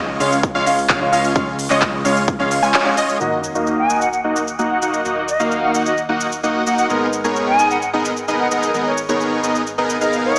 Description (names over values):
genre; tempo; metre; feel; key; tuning
EDM, festival progressive house; 130 BPM; 4/4; straight; Eb minor; A4 = 440 Hz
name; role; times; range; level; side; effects
unison pluck; arpeggios; 0.0-3.2 s; Eb5 to Ab5; -24 LUFS; equal; phaser, vintage 12-bit sampler grit, sidechain pumping, digital delay
dense compressed supersaw; riff; 0.0-10.4 s; Ab3 to Ab5; -21 LUFS; equal; sidechain pumping, low-pass filter, digital delay
fat analog bass; bass; 0.0-10.4 s; Ab1 to Eb2; -33 LUFS; equal; sidechain pumping
clear grand piano; accompaniment; 0.2-10.4 s; Ab3 to F5; -26 LUFS; equal; sidechain pumping, digital delay
big-room dance drum kit; drums; 0.2-10.4 s; handclaps, hi-hat, shaker; -25 LUFS; equal; none
electronic kick drum; drums; 0.4-2.4 s; none; -24 LUFS; equal; none
sub drop; sound effects; 3.2-5.0 s; none; -42 LUFS; equal; none
silver concert flute; melody; 3.8-10.4 s; Db5 to Ab5; -23 LUFS; equal; digital delay
room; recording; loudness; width
wet digital room reverb, RT60 1.1 s; small speaker sound; -18 LUFS; mono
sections
0.0-3.2 A section; 3.2-10.4 B section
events
drop 0.0-3.2; band accent 2.7; impact 3.2-5.0; filter sweep on supersaw synth 3.2-10.4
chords
0.0 Db; 3.2 Ebm; 6.9 Abmadd9